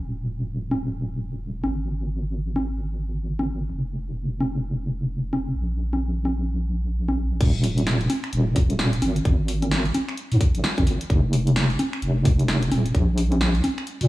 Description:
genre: UK garage, two-step garage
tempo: 130 BPM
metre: 4/4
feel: swing 61% on 16ths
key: unclear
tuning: A4 = 440 Hz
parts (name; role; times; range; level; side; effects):
- deep soft wobble bass; bass; 0.0-14.1 s; Eb1 to Bb2; -23 LUFS; equal; chorus
- punchy analog drum machine; drums; 0.7-14.1 s; congas, crash cymbal, finger snaps, hi-hat, snare drum; -27 LUFS; equal; none
- electronic kick drum; drums; 7.4-13.1 s; none; -20 LUFS; equal; none
room: light reverb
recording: small room ambience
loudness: -21 LUFS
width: side -17 dB against mid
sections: 0.0-7.4 A section; 7.4-14.1 B section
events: drop 7.4-14.1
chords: none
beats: | 0.02 0.48 0.94 1.41 | 1.87 2.33 2.79 3.25 | 3.71 4.18 4.64 5.10 | 5.56 6.02 6.48 6.95 | 7.41 7.87 8.33 8.79 | 9.25 9.71 10.18 10.64 | 11.10 11.56 12.02 12.48 | 12.95 13.41 13.87

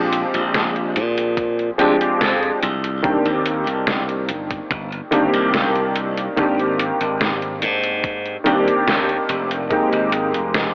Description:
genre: vaporwave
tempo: 72 BPM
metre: 4/4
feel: straight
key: C minor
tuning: A4 = 440 Hz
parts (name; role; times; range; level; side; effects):
- warm electric grand piano; accompaniment; 0.0-10.7 s; Eb3 to G4; -19 LUFS; equal; ensemble chorus, tape echo
- glassy slap bass; bass; 0.0-10.7 s; F1 to Bb2; -23 LUFS; equal; none
- detuned 8-bit digital drum machine; drums; 0.1-10.7 s; hi-hat, snare drum; -23 LUFS; equal; overdrive, vintage 12-bit sampler grit
- electronic kick drum; drums; 1.4-9.9 s; none; -26 LUFS; equal; overdrive, vintage 12-bit sampler grit
room: moderate huge ambient reverb, RT60 8.7 s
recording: worn, warbling old tape, cassette tape, warbly pitch drift, AM radio sound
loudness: -17 LUFS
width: side -35 dB against mid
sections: 0.0-10.7 A section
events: none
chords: 0.0 Bb13; 2.6 Cm9; 6.4 Abmaj9#11; 9.7 Fm11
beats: 0.54 1.38 2.21 | 3.04 3.88 4.71 5.54 | 6.38 7.21 8.04 8.88 | 9.71 10.54

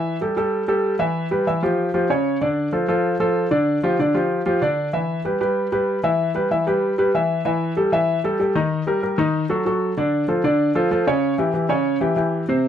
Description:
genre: jazz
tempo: 191 BPM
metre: 4/4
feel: straight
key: unclear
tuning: A4 = 440 Hz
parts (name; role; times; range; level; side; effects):
- warm concert grand piano; solo; 0.0-12.7 s; C3 to E5; -18 LUFS; equal; none
room: moderate studio ambience, RT60 0.5 s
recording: none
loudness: -18 LUFS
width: side -9 dB against mid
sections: 0.0-7.4 A section; 7.4-12.7 B section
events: none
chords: 0.0 A5; 1.2 Em; 1.8 Db; 2.4 Dm; 3.7 G5; 4.9 Em; 7.4 A5; 8.7 Eb; 9.3 D#dim; 10.0 Dmmaj7; 11.2 C#dim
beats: 0.21 0.52 0.84 | 1.15 1.47 1.78 2.10 | 2.41 2.73 3.04 3.35 | 3.67 3.98 4.30 4.61 | 4.93 5.24 5.56 5.87 | 6.19 6.50 6.82 7.13 | 7.45 7.76 8.08 8.39 | 8.71 9.02 9.34 9.65 | 9.97 10.28 10.60 10.91 | 11.22 11.54 11.85 12.17 | 12.48

